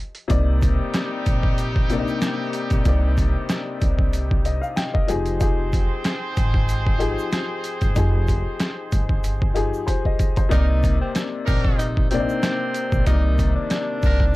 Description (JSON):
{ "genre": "hip hop, boom-bap hip-hop", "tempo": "94 BPM", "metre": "4/4", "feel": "swing 55% on 16ths", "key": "C minor", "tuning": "A4 = 440 Hz", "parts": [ { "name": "warm upright piano", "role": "accompaniment", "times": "0.0-14.4 s", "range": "C3 to G5", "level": "-26 LUFS", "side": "left 5 dB", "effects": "high-pass filter, low-pass filter" }, { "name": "boom bap sampler-style drum kit", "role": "drums", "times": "0.1-14.3 s", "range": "hi-hat, kick drum, rim click, snare drum", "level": "-21 LUFS", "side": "equal", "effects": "overdrive" }, { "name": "brilliant trumpet section", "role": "stabs", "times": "0.3-14.3 s", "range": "G3 to C5", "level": "-31 LUFS", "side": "right 2 dB", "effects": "high-pass filter, low-pass filter, digital delay" }, { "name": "upright bass", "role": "bass", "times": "0.3-14.4 s", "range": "F1 to C2", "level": "-22 LUFS", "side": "equal", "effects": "none" }, { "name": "egg shaker", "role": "percussion", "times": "0.3-14.2 s", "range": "none", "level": "-47 LUFS", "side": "right 6 dB", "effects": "none" }, { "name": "breathy tenor saxophone", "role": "melody", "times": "10.5-14.4 s", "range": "C4 to Eb4", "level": "-27 LUFS", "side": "right 1 dB", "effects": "high-pass filter, low-pass filter" } ], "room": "little or no reverb", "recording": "dark, warm production", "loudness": "-19 LUFS", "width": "side -19 dB against mid", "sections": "0.0-10.5 A section; 10.5-14.4 B section", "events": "break 0.0-0.3; drum fill 9.9-10.5", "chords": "0.3 Cm9; 5.1 Fm9; 10.5 Cm9", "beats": "| 0.30 0.94 1.58 2.22 | 2.85 3.49 4.13 4.77 | 5.41 6.05 6.68 7.32 | 7.96 8.60 9.24 9.88 | 10.52 11.15 11.79 12.43 | 13.07 13.71 14.35" }